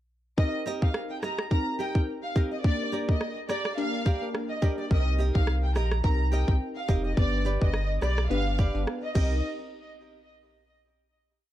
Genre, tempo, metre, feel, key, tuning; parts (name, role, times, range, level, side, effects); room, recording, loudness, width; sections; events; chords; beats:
dancehall; 106 BPM; 4/4; swing 56% on 16ths; C minor; A4 = 440 Hz
warm studio violin section; melody; 0.4-9.4 s; D5 to Bb5; -34 LUFS; right 1 dB
glassy wavetable pluck; accompaniment; 0.4-9.4 s; Bb3 to B4; -34 LUFS; left 2 dB; chorus, sidechain pumping
island pop drum kit; drums; 0.4-9.3 s; crash cymbal, kick drum, rim click; -25 LUFS; equal
nylon-string guitar; arpeggios; 0.7-9.3 s; G4 to Eb5; -36 LUFS; right 3 dB; digital delay
warm sub bass; bass; 4.9-9.4 s; F1 to C2; -26 LUFS; equal
little or no reverb; dark, warm production, faint mains hum; -25 LUFS; side -13 dB against mid
0.4-9.4 verse; 9.4-11.5 final hit
0.4 Cm7; 2.6 Gm; 4.9 Cm7; 7.2 G; 9.2 Cm7; 9.4 N.C.
| 0.38 0.94 1.51 2.08 | 2.64 3.21 3.77 4.34 | 4.91 5.47 6.04 6.61 | 7.17 7.74 8.30 8.87